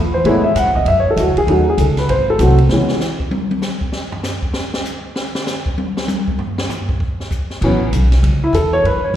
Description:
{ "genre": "jazz piano trio", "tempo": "195 BPM", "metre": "4/4", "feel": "swing 63% on 8ths", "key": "A major", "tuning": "A4 = 439 Hz", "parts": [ { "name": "upright bass", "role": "bass", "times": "0.0-2.9, 7.6-9.2 s", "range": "G#1 to A2", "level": "-15 LUFS", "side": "equal", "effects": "none" }, { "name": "dark upright piano", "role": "melody", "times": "0.1-2.9, 7.6-9.2 s", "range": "E3 to F#5", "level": "-15 LUFS", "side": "equal", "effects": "slapback echo" }, { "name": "open jazz drum kit", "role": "drums", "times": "0.2-8.9 s", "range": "crash cymbal, hi-hat, kick drum, ride cymbal, snare drum, toms", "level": "-22 LUFS", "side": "equal", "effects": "slapback echo" } ], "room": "light reverb, small room ambience", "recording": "live gig heard through the venue's PA, recital hall reverb", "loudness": "-14 LUFS", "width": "side -11 dB against mid", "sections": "0.0-7.6 A section; 7.6-9.2 A section", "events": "upright piano solo 0.0-9.2; drum solo 2.7-7.6", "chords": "0.2 F#m9; 1.5 D#m7b5; 2.1 G#7b9; 2.7 N.C.; 7.6 A" }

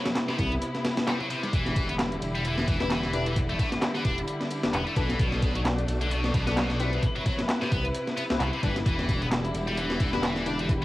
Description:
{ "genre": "breakbeat, breaks", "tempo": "131 BPM", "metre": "4/4", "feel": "swing 56% on 16ths", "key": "E minor", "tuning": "A4 = 440 Hz", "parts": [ { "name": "clear symphonic string section", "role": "sustained chords", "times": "0.0-10.8 s", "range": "B2 to B4", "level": "-33 LUFS", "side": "equal", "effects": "sidechain pumping, cassette tape" }, { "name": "breakbeat sampler-style drum kit", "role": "drums", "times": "0.1-10.8 s", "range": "hi-hat, kick drum, snare drum", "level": "-28 LUFS", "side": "equal", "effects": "overdrive, cassette tape" }, { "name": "house drum kit", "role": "drums", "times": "0.1-10.8 s", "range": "handclaps, hi-hat, ride cymbal", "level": "-36 LUFS", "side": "equal", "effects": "cassette tape" }, { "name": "high-gain distorted guitar", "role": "riff", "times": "0.3-10.8 s", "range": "B2 to E4", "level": "-32 LUFS", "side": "left 1 dB", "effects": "distortion, cassette tape, tape echo" }, { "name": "dark detuned saw bass", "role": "bass", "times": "0.4-10.8 s", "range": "E1 to C2", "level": "-30 LUFS", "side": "equal", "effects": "none" }, { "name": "filtered dub chord stab", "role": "stabs", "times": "2.8-10.8 s", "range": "C4 to B4", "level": "-36 LUFS", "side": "left 5 dB", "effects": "lush chorus, cassette tape, tape echo" } ], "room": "light reverb", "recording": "home recording on cassette, vinyl crackle", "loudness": "-24 LUFS", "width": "side -17 dB against mid", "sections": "0.0-10.8 A section", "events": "kick drops out 0.6-1.5", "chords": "0.0 Cmaj7; 1.5 Em7; 5.2 Bm7; 7.0 Cmaj7; 8.9 Em7" }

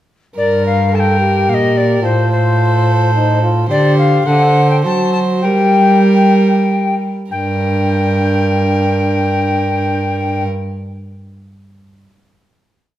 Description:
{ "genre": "classical, renaissance-style consort dance", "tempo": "91-109 BPM", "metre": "3/4", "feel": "straight", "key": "G minor", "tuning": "A4 = 440 Hz", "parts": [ { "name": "alto recorder", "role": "melody", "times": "0.4-10.4 s", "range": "C5 to A5", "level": "-17 LUFS", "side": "left 4 dB", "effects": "none" }, { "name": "warm violin", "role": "second line", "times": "0.4-10.4 s", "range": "A4 to C5", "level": "-20 LUFS", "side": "right 4 dB", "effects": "none" }, { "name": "clear trombone", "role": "accompaniment", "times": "0.4-10.5 s", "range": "D4 to Bb4", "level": "-18 LUFS", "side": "left 2 dB", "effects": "none" }, { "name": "dark cello", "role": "bass", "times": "0.4-10.4 s", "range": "G2 to G3", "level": "-15 LUFS", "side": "right 1 dB", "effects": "none" } ], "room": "wet recital hall reverb, RT60 1.3 s", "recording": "dark, warm production", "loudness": "-11 LUFS", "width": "side -13 dB against mid", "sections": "0.4-7.3 A section; 7.3-11.3 final chord", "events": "slowing down 2.9-7.3", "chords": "0.4 Gm; 2.0 F7/A; 3.7 D7sus4; 4.3 D7; 5.4 Gm" }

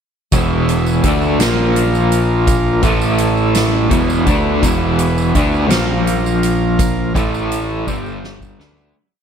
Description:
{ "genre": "psychedelic rock", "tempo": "56 BPM (dotted quarters)", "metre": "6/8", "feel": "straight", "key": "unclear", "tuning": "A4 = 440 Hz", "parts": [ { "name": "combo organ", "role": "sustained chords", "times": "0.3-8.9 s", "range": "G3 to E#5", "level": "-24 LUFS", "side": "right 4 dB", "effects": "none" }, { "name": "overdriven semi-hollow guitar", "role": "riff", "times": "0.3-8.9 s", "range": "E2 to D4", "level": "-15 LUFS", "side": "equal", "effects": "tremolo" }, { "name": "growling picked electric bass", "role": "bass", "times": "0.3-8.9 s", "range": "E1 to D2", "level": "-20 LUFS", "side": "equal", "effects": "overdrive" }, { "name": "soft-mallet drum kit", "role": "drums", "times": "0.3-8.8 s", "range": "hi-hat, kick drum, snare drum", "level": "-20 LUFS", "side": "equal", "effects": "none" }, { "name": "tambourine", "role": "percussion", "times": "0.3-8.9 s", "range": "none", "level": "-33 LUFS", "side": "right 10 dB", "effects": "none" } ], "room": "light reverb, small room ambience", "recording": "none", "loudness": "-13 LUFS", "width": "side -7 dB against mid", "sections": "0.3-8.9 riff", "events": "fade-out 6.8-8.9; drum fill 7.9-8.9", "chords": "0.3 E; 1.4 A#5; 2.8 A5; 3.9 E; 5.7 A#5; 7.2 A5; 7.9 G5; 8.6 E" }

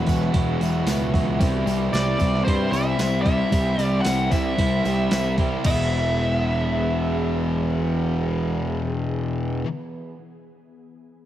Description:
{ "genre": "rock, shoegaze and dream pop", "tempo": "113 BPM", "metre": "4/4", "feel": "straight", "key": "unclear", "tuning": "A4 = 440 Hz", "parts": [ { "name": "ethereal airy pad", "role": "sustained chords", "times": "0.0-9.6 s", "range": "E3 to C#6", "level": "-36 LUFS", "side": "equal", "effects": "none" }, { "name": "twelve-string electric guitar", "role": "arpeggios", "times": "0.0-9.7 s", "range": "F#3 to G#4", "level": "-34 LUFS", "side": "right 7 dB", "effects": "none" }, { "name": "biting overdriven guitar", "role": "riff", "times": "0.0-9.7 s", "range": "E2 to F#4", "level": "-29 LUFS", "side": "right 7 dB", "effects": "reverse reverb, cassette tape" }, { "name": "thick fuzz guitar", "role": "riff", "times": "0.0-9.7 s", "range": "E2 to C4", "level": "-27 LUFS", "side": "left 6 dB", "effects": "distortion, analog chorus, cassette tape" }, { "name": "fuzz picked electric bass", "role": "bass", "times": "0.0-9.6 s", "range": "E1 to G2", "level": "-25 LUFS", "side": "equal", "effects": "overdrive" }, { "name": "crisp 8-bit digital drum machine", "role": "drums", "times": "0.1-5.8 s", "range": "crash cymbal, hi-hat, kick drum, snare drum", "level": "-24 LUFS", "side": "equal", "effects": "cassette tape" }, { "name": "tambourine", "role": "percussion", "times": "0.1-5.9 s", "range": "none", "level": "-42 LUFS", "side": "left 7 dB", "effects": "none" }, { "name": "nasal lead guitar with a parked wah", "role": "melody", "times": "1.9-9.6 s", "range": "C5 to F#5", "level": "-28 LUFS", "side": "equal", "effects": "overdrive, cassette tape, tape echo" } ], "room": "little or no reverb", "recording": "home recording on cassette", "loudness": "-20 LUFS", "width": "side -12 dB against mid", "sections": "0.0-5.6 A section; 5.6-9.9 B section", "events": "none", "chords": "0.0 Esus2; 1.4 C; 5.6 E" }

